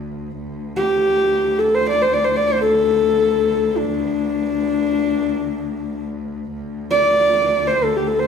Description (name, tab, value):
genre	mongolian traditional, Mongolian folk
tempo	free time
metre	none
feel	none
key	unclear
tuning	A4 = 439 Hz
part	rich cello	drone	0.0-8.3 s	D2	-26 LUFS	left 3 dB	none
part	dark horsehead fiddle	melody	0.8-8.3 s	D4 to D5	-16 LUFS	left 1 dB	none
room	wet large studio reverb, RT60 1.3 s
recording	band playing live in one room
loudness	-16 LUFS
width	side -6 dB against mid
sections	0.0-6.5 A section; 6.5-8.3 A section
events	none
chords	none